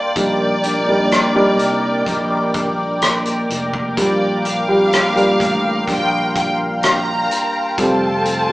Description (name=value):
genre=pop ballad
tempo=63 BPM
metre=4/4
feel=straight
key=unclear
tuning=A4 = 440 Hz
part: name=warm studio violin section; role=melody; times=0.0-8.5 s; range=D5 to Bb5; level=-21 LUFS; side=equal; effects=none
part: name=warm upright piano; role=accompaniment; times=0.0-8.5 s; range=Bb2 to Bb4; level=-19 LUFS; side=equal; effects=none
part: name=warm analog pad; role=sustained chords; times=0.0-8.5 s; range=A4 to D6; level=-21 LUFS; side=equal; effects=chorus
part: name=picked plugged-in steel-string acoustic guitar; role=arpeggios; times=0.0-8.5 s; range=Bb2 to G4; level=-27 LUFS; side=right 1 dB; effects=none
part: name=fretless electric bass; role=bass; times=0.2-8.5 s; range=F1 to C2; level=-25 LUFS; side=equal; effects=none
part: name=loose indie drum kit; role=drums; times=0.2-8.5 s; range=hi-hat, kick drum, rim click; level=-21 LUFS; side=left 1 dB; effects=none
room=wet studio reverb, RT60 0.7 s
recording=band playing live in one room, small speaker sound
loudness=-14 LUFS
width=side -18 dB against mid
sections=0.0-8.5 A section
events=none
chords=0.2 Ebmaj7/Bb; 4.0 Gm7; 7.8 Fadd9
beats=| 0.16 1.11 2.06 3.02 | 3.97 4.92 5.88 6.83 | 7.78